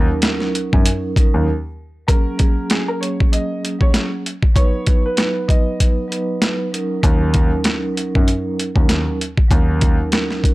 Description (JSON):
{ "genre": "hip hop, boom-bap hip-hop", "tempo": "97 BPM", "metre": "4/4", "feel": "swing 57% on 16ths", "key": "Eb minor", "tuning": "A4 = 439 Hz", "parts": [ { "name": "vibraphone with soft mallets", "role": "accompaniment", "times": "0.0-10.5 s", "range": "Gb3 to B4", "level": "-22 LUFS", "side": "right 2 dB", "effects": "cassette tape, high-pass filter, low-pass filter" }, { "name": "dark concert grand piano", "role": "bass", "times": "0.0-1.5, 7.0-10.0 s", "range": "Eb2 to Gb2", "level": "-20 LUFS", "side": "equal", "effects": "none" }, { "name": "boom bap sampler-style drum kit", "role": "drums", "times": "0.2-10.5 s", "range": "hi-hat, kick drum, snare drum", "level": "-15 LUFS", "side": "equal", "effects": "overdrive" }, { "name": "clear upright piano", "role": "melody", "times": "2.1-6.4 s", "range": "Ab4 to Eb5", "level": "-26 LUFS", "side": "right 1 dB", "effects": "high-pass filter, low-pass filter, tape echo" } ], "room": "little or no reverb", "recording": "dry, gritty hardware recording, cassette tape", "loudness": "-15 LUFS", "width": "side -19 dB against mid", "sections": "0.0-2.1 A section; 2.1-10.5 B section", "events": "break 1.5-2.1", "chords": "0.0 Ebm7; 2.1 Gbadd9; 4.6 B; 6.7 Ebm7", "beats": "0.23 0.85 1.47 | 2.08 2.70 3.32 3.94 | 4.56 5.18 5.80 6.42 | 7.03 7.65 8.27 8.89 | 9.51 10.13" }